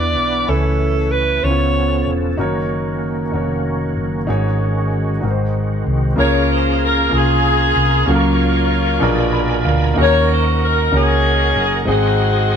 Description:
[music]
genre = slow gospel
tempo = 63 BPM (dotted quarters)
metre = 6/8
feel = straight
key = Db major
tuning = A4 = 440 Hz
[part]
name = warm alto saxophone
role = melody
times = 0.0-2.1 s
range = A4 to D5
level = -19 LUFS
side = right 1 dB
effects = none
[part]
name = warm grand piano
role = accompaniment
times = 0.0-12.6 s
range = Ab2 to Cb6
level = -21 LUFS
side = equal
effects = none
[part]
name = bright tonewheel organ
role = sustained chords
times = 0.0-12.6 s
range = Eb3 to Db6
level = -22 LUFS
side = right 2 dB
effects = fast rotary speaker, chorus vibrato
[part]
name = hollow-body short-scale fingered electric bass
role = bass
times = 0.0-12.6 s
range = E1 to E2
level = -18 LUFS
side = equal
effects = none
[part]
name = mellow saxophone section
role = melody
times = 6.2-12.6 s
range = Bb3 to Db5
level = -17 LUFS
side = left 2 dB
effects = none
[sound]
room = moderate studio reverb, RT60 0.7 s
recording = band playing live in one room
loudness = -14 LUFS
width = side -7 dB against mid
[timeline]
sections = 0.0-6.2 A section; 6.2-12.6 B section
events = grand piano fill 9.0-10.0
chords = 0.5 Amaj7/C#; 1.4 Db7alt; 2.4 Gb6; 4.3 Ab7sus4; 5.2 Ab7; 6.2 Db6; 8.1 Gbmaj7/Db; 9.0 Bb7b9; 10.0 Ebm7; 11.9 Ab7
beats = | 0.48 1.43 | 2.38 3.33 | 4.28 5.23 | 6.18 7.12 | 8.07 9.02 | 9.97 10.92 | 11.87

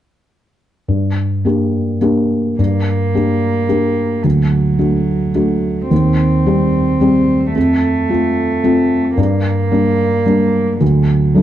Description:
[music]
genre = neoclassical piano and strings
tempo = 109 BPM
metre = 3/4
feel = rubato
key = G minor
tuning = A4 = 440 Hz
[part]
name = felt-muted upright piano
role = accompaniment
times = 0.9-11.4 s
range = D2 to G4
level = -13 LUFS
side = equal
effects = none
[part]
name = warm cello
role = second line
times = 2.6-11.4 s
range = F#3 to C4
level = -19 LUFS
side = right 4 dB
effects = none
[sound]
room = moderate large studio reverb, RT60 0.8 s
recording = dark, warm production, nothing above 10.7 kHz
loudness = -12 LUFS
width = side -12 dB against mid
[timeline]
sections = 0.9-2.6 A section; 2.6-11.4 B section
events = none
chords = 0.9 Gm; 4.2 D; 5.9 Cm/Eb; 7.6 F; 9.2 Gm; 10.8 D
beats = | 0.89 1.46 2.01 | 2.58 3.14 3.69 | 4.24 4.79 5.35 | 5.91 6.46 7.00 | 7.55 8.10 8.64 | 9.18 9.72 10.26 | 10.81 11.35

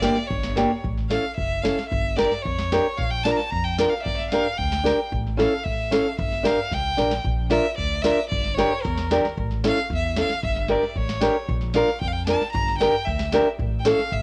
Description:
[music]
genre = klezmer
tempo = 113 BPM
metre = 2/4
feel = straight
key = G dorian sharp4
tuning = A4 = 439 Hz
[part]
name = bright violin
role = melody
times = 0.0-14.2 s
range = Bb4 to Bb5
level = -30 LUFS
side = equal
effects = cassette tape, tape echo
[part]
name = nylon-string guitar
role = accompaniment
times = 0.0-14.0 s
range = Bb3 to Bb4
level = -24 LUFS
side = equal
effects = cassette tape
[part]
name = upright bass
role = bass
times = 0.0-14.2 s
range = F#1 to F2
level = -31 LUFS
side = equal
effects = none
[part]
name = booming analog drum machine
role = drums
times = 0.0-14.2 s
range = kick drum, snare drum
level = -32 LUFS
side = equal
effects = none
[sound]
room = light reverb, studio reverb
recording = home recording on cassette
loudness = -23 LUFS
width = mono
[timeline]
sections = 0.0-7.3 A section; 7.3-14.2 A section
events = drum fill 6.7-7.3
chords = 0.0 Gm; 0.8 A; 1.9 Gm; 3.0 Bb; 4.1 Gm; 5.1 A; 6.2 Gm; 7.3 Bb; 8.3 Gm; 9.4 A; 10.4 Gm; 11.5 Bb; 12.5 Gm; 13.6 A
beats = 0.30 | 0.84 1.37 | 1.91 2.45 | 2.98 3.52 | 4.06 4.59 | 5.13 5.66 | 6.20 6.73 | 7.26 7.79 | 8.32 8.85 | 9.38 9.91 | 10.44 10.96 | 11.49 12.02 | 12.55 13.07 | 13.60 14.12

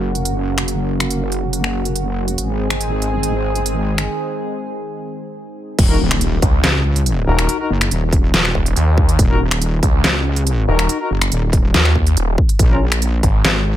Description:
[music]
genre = heavy wobble dubstep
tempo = 141 BPM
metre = 4/4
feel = half-time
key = Eb minor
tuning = A4 = 439 Hz
[part]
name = lush unison pad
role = sustained chords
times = 0.0-5.8 s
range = Db3 to Ab4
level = -22 LUFS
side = right 1 dB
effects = chorus, sidechain pumping
[part]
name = wobble bass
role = bass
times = 0.0-13.8 s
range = Eb1 to Db2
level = -18 LUFS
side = equal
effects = chorus, overdrive
[part]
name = dubstep drum kit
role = drums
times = 0.2-13.5 s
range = crash cymbal, finger snaps, hi-hat, snare drum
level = -19 LUFS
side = equal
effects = none
[part]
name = electronic kick drum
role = drums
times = 5.8-13.3 s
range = none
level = -15 LUFS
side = equal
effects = none
[part]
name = impact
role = sound effects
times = 5.8-7.5 s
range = none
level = -25 LUFS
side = equal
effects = none
[part]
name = warm brass ensemble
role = stabs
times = 5.9-12.8 s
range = Db4 to Bb4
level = -23 LUFS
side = left 4 dB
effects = ping-pong delay
[part]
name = snarling distorted saw bass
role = bass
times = 6.4-13.4 s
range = Eb1 to Eb2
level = -15 LUFS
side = equal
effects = distortion, overdrive
[sound]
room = little or no reverb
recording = none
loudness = -14 LUFS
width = side -12 dB against mid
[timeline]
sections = 0.0-5.8 A section; 5.8-13.8 B section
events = filter sweep on analog synth pad 0.0-5.8; break 4.1-5.8; drop 5.8-13.8; impact 5.8-7.5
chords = 0.0 Gb; 2.4 Ab; 5.8 Ebm; 12.6 N.C.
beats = 0.25 | 0.68 1.10 1.53 1.96 | 2.38 2.81 3.23 3.66 | 4.08 4.51 4.93 5.36 | 5.79 6.21 6.64 7.06 | 7.49 7.91 8.34 8.76 | 9.19 9.62 10.04 10.47 | 10.89 11.32 11.74 12.17 | 12.59 13.02 13.45

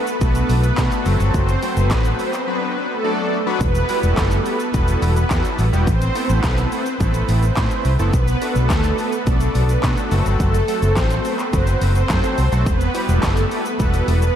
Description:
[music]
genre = dance-pop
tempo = 106 BPM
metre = 4/4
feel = straight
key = E minor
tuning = A4 = 440 Hz
[part]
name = big bright polysynth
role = accompaniment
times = 0.0-14.2 s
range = F#3 to D5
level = -24 LUFS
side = left 1 dB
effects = chorus, sidechain pumping
[part]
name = pop drum kit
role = drums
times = 0.1-14.4 s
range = handclaps, hi-hat, kick drum, shaker, snare drum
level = -23 LUFS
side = equal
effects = overdrive
[part]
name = vintage muted fingered electric bass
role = bass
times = 0.2-14.3 s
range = E1 to B2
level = -18 LUFS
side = equal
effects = sidechain pumping
[part]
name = group handclap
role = percussion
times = 0.8-2.0, 13.2-13.4 s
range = none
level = barely audible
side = none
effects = none
[sound]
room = light reverb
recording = none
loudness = -16 LUFS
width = side -10 dB against mid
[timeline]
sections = 0.0-3.6 A section; 3.6-14.4 A section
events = drop 0.0-3.6, 3.6-14.4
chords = 0.0 Bm7; 1.1 F#dim; 2.5 Bm; 3.6 Emadd9; 5.9 Amadd9; 8.1 Bm7; 10.1 F#dim; 12.7 Emadd9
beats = 0.21 0.78 | 1.34 1.91 2.48 3.04 | 3.61 4.17 4.74 5.30 | 5.87 6.44 7.00 7.57 | 8.14 8.70 9.27 9.83 | 10.40 10.97 11.53 12.10 | 12.66 13.23 13.80

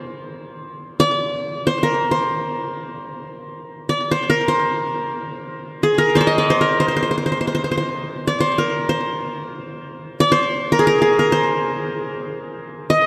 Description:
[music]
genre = Arabic maqam ensemble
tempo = free time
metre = none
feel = none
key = C maqam bayati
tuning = A4 = 444 Hz
[part]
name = qanun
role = solo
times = 0.0-13.1 s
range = Ab4 to Eb5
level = -20 LUFS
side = equal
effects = slapback echo
[sound]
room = wet cathedral reverb, RT60 6.0 s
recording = in a vast, echoing space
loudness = -19 LUFS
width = mono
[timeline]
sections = 0.0-13.1 A section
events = none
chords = none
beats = free time

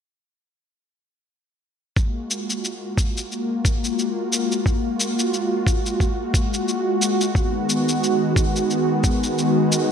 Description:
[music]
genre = organic downtempo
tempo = 89 BPM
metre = 4/4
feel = swing 56% on 16ths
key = unclear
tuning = A4 = 440 Hz
[part]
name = warm analog pad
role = sustained chords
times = 2.0-9.9 s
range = D#3 to F#4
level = -21 LUFS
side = equal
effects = chorus, sidechain pumping
[part]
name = electronic kick drum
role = drums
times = 2.0-9.2 s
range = none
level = -20 LUFS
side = equal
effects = overdrive
[part]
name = shaker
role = drums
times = 2.0-9.9 s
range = none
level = -26 LUFS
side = left 1 dB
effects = overdrive
[sound]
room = moderate plate reverb, RT60 1.9 s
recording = bright 1980s-style digital production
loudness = -19 LUFS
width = side -7 dB against mid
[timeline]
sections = 2.0-9.9 A section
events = none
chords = 2.0 F#maj9; 7.4 G#m7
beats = | 1.96 2.64 3.31 3.98 | 4.66 5.33 6.01 6.68 | 7.36 8.03 8.70 9.38

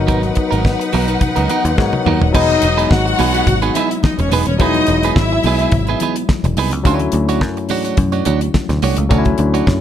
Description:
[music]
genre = disco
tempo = 106 BPM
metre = 4/4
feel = straight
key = unclear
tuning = A4 = 443 Hz
[part]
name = warm studio string section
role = second line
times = 0.0-6.0 s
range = B3 to F#5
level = -19 LUFS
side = equal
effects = none
[part]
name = barky tine electric piano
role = accompaniment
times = 0.0-9.8 s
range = F#3 to F#5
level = -20 LUFS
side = left 7 dB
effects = none
[part]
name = picked electric bass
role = bass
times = 0.0-9.8 s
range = D#1 to G#2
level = -18 LUFS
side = equal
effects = none
[part]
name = clean electric guitar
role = accompaniment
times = 0.1-9.7 s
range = F#3 to C#5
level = -21 LUFS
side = right 10 dB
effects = none
[part]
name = damped 70s drum kit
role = drums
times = 0.1-9.8 s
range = crash cymbal, hi-hat, kick drum, snare drum, toms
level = -18 LUFS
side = equal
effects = none
[part]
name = congas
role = percussion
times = 0.1-9.5 s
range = none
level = -27 LUFS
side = left 5 dB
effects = none
[sound]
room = light reverb, small room reverb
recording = none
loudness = -13 LUFS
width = side -10 dB against mid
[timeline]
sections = 0.0-2.3 A section; 2.3-9.8 B section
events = tine electric piano fill 1.2-2.3; drum fill 1.8-2.3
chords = 0.0 G#m9; 2.3 Emaj7; 6.9 Dmaj7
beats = | 0.08 0.65 1.21 1.78 | 2.34 2.90 3.47 4.03 | 4.60 5.16 5.72 6.29 | 6.85 7.42 7.98 8.54 | 9.11 9.67

